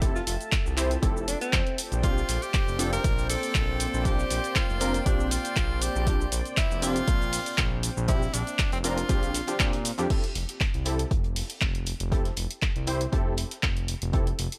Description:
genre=deep house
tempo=119 BPM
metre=4/4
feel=swing 54% on 16ths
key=F major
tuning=A4 = 440 Hz
part: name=warm analog pad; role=sustained chords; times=0.0-10.1 s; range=A4 to A5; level=-40 LUFS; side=equal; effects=chorus, sidechain pumping
part: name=warm analog keys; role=stabs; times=0.0-14.3 s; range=C4 to C5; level=-35 LUFS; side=equal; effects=chorus, sidechain pumping
part: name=smooth synth bass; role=bass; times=0.0-14.5 s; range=F1 to Bb2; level=-33 LUFS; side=equal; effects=none
part: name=electronic kick drum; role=drums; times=0.0-14.2 s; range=none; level=-29 LUFS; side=equal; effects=none
part: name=punchy analog drum machine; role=drums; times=0.0-14.6 s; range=crash cymbal, handclaps, hi-hat, shaker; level=-33 LUFS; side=equal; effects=none
part: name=warm soul drum kit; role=drums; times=0.0-14.5 s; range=hi-hat, snare drum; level=-46 LUFS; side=equal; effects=none
part: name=deep dark ambient pad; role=texture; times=0.0-10.1 s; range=Bb3 to G5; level=-43 LUFS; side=equal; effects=none
part: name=breathy alto saxophone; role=melody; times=0.2-1.8 s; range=C4 to F4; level=-37 LUFS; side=equal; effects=analog delay
part: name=edgy tenor saxophone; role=melody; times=2.0-9.8 s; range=C4 to Bb4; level=-35 LUFS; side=equal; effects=analog delay
room=studio reverb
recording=none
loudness=-27 LUFS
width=mono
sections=0.0-10.1 A section; 10.1-14.6 B section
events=drop 0.0-10.1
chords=0.0 Fmaj9; 1.8 Bb69; 10.1 Fmaj9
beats=| 0.02 0.52 1.03 1.53 | 2.04 2.54 3.04 3.55 | 4.05 4.56 5.06 5.57 | 6.07 6.57 7.08 7.58 | 8.09 8.59 9.09 9.60 | 10.10 10.61 11.11 11.62 | 12.12 12.62 13.13 13.63 | 14.14

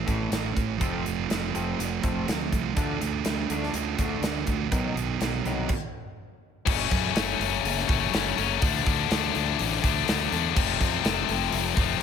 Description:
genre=quiet-loud alternative rock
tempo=123 BPM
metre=4/4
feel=straight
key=unclear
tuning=A4 = 440 Hz
part: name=twangy electric guitar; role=arpeggios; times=0.0-5.7 s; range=A2 to D4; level=-35 LUFS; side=left 5 dB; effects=analog chorus
part: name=thick fuzz guitar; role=riff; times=0.0-5.7 s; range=A2 to F#4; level=-29 LUFS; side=right 11 dB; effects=distortion
part: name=fuzz fingered electric bass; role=bass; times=0.0-12.0 s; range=F1 to F#2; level=-32 LUFS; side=equal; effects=overdrive
part: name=big rock drum kit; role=drums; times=0.1-11.9 s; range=crash cymbal, hi-hat, kick drum, snare drum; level=-29 LUFS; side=equal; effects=none
part: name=high-gain distorted guitar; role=riff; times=6.7-12.0 s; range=F2 to D4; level=-25 LUFS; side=left 16 dB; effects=distortion
room=small room ambience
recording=none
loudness=-24 LUFS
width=side -7 dB against mid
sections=0.0-6.7 A section; 6.7-12.0 B section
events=stop 5.7-6.7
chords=0.0 A; 0.8 F; 2.8 Dm; 4.7 B; 5.7 N.C.; 6.7 F#m; 8.6 Dm; 10.6 F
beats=0.32 | 0.81 1.30 1.78 2.27 | 2.76 3.25 3.74 4.23 | 4.71 5.20 5.69 6.18 | 6.67 7.16 7.64 8.13 | 8.61 9.10 9.59 10.07 | 10.56 11.04 11.53 12.01

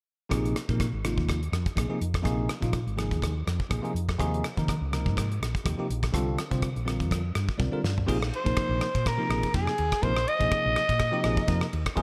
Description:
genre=electric jazz fusion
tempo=124 BPM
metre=4/4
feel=swing 55% on 16ths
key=unclear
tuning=A4 = 440 Hz
part: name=bell-like tine electric piano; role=accompaniment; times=0.3-12.0 s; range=C3 to D5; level=-34 LUFS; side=equal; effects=phaser
part: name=woody fretless electric bass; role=bass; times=0.3-12.0 s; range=Ab1 to Eb3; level=-32 LUFS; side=equal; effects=subtle chorus
part: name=damped 70s drum kit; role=drums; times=0.3-12.0 s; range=crash cymbal, hi-hat, kick drum, ride cymbal, rim click, snare drum, toms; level=-33 LUFS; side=equal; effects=gated reverb
part: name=growling soprano saxophone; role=melody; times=8.4-11.7 s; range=Ab4 to Eb5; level=-30 LUFS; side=equal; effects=none
room=light reverb, small room ambience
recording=bright 1980s-style digital production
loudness=-28 LUFS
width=mono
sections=0.3-8.1 A section; 8.1-12.0 B section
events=tine electric piano fill 7.4-8.1; drum fill 7.6-8.1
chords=0.3 Bb9sus4; 4.2 Eb9sus4; 6.1 C9sus4; 8.1 Bb9sus4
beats=| 0.30 0.79 1.28 1.76 | 2.25 2.74 3.22 3.71 | 4.20 4.68 5.17 5.65 | 6.14 6.62 7.11 7.60 | 8.08 8.57 9.05 9.54 | 10.02 10.51 10.99 11.48 | 11.96

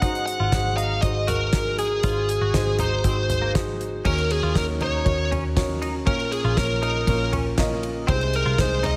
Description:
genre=piano-driven pop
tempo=119 BPM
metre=4/4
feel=straight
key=unclear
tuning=A4 = 437 Hz
part: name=bluesy overdriven lead guitar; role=melody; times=0.0-9.0 s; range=Ab4 to Gb5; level=-28 LUFS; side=equal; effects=distortion
part: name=warm upright piano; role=accompaniment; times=0.0-9.0 s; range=Ab2 to Eb5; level=-31 LUFS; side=equal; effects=none
part: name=direct-recorded clean electric guitar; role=riff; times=0.0-9.0 s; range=Bb3 to Ab4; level=-36 LUFS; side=equal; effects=analog chorus
part: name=vintage muted picked electric bass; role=bass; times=0.0-9.0 s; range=Ab1 to Eb2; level=-29 LUFS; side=equal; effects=none
part: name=damped 70s drum kit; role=drums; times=0.0-9.0 s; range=crash cymbal, hi-hat, kick drum, ride cymbal, snare drum, toms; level=-29 LUFS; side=equal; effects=none
room=moderate lush hall reverb, RT60 1.8 s, studio ambience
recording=big arena sound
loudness=-23 LUFS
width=mono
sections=0.0-4.1 A section; 4.1-9.0 B section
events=none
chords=0.0 Ab7; 4.1 Ebm7; 6.1 Bbm; 8.1 Ab/C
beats=| 0.02 0.52 1.03 1.53 | 2.04 2.54 3.04 3.55 | 4.05 4.56 5.06 5.56 | 6.07 6.57 7.08 7.58 | 8.08 8.59

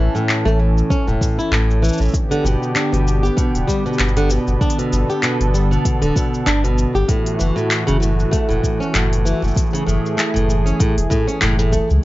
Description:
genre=folktronica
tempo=97 BPM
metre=4/4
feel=swing 56% on 16ths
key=unclear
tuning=A4 = 439 Hz
part: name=warm analog pad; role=sustained chords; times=0.0-12.0 s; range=D3 to A4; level=-23 LUFS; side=right 1 dB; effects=lush chorus
part: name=flamenco guitar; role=arpeggios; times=0.0-11.9 s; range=A2 to G4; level=-20 LUFS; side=equal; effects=digital delay
part: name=warm sub bass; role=bass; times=0.0-12.0 s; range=D1 to C#2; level=-18 LUFS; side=equal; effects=none
part: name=organic electronic drum kit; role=drums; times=0.2-12.0 s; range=handclaps, hi-hat, shaker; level=-23 LUFS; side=left 1 dB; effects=none
part: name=electronic kick drum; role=drums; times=0.9-11.9 s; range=none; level=-20 LUFS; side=equal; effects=none
room=light reverb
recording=nothing above 7.5 kHz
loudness=-15 LUFS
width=side -17 dB against mid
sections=0.0-12.0 A section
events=none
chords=0.0 A; 2.1 G; 7.1 F#m7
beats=0.28 0.90 1.52 | 2.14 2.76 3.38 4.00 | 4.61 5.23 5.85 6.47 | 7.09 7.71 8.33 8.94 | 9.56 10.18 10.80 11.42

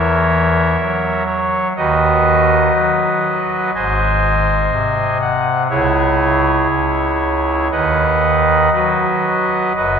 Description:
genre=classical, chorale-style piece for pipe organ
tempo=61 BPM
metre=4/4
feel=rubato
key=B major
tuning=A4 = 440 Hz
part: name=pipe organ, soft reed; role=solo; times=0.0-10.0 s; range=F#1 to G#5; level=-13 LUFS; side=equal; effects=none
room=wet church reverb, RT60 2.9 s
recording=none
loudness=-13 LUFS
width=side -7 dB against mid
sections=0.0-10.0 A section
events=none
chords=0.0 F#7/E; 1.8 B/D#; 3.7 G#; 5.7 C#m; 7.7 B/D#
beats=0.79 | 1.76 2.73 3.74 4.72 | 5.70 6.70 7.72 8.73 | 9.75

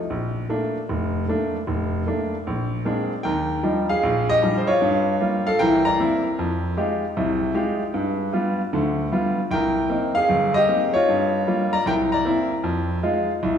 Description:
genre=solo jazz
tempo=153 BPM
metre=4/4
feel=swing 65% on 8ths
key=Bb major, Eb major from 3.2 s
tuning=A4 = 440 Hz
part: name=clear grand piano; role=solo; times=0.1-13.6 s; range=F1 to Bb5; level=-20 LUFS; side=equal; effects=none
room=wet concert hall reverb, RT60 2.3 s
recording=recorded in a church or concert hall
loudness=-20 LUFS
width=side -8 dB against mid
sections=0.0-3.2 A section; 3.2-13.6 B section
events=none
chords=0.1 Bbmaj7; 2.5 Bb9; 3.2 Ebmaj9; 4.8 Gm7b5; 5.6 C7; 6.4 Fm9; 7.9 G7; 9.5 Cm7; 11.1 Gm7b5; 11.9 C7; 12.6 Fm7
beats=| 0.11 0.50 0.89 1.28 | 1.68 2.07 2.46 2.85 | 3.25 3.64 4.03 4.42 | 4.81 5.20 5.60 5.99 | 6.38 6.77 7.16 7.55 | 7.95 8.34 8.73 9.12 | 9.51 9.90 10.29 10.69 | 11.08 11.47 11.86 12.25 | 12.64 13.04 13.43

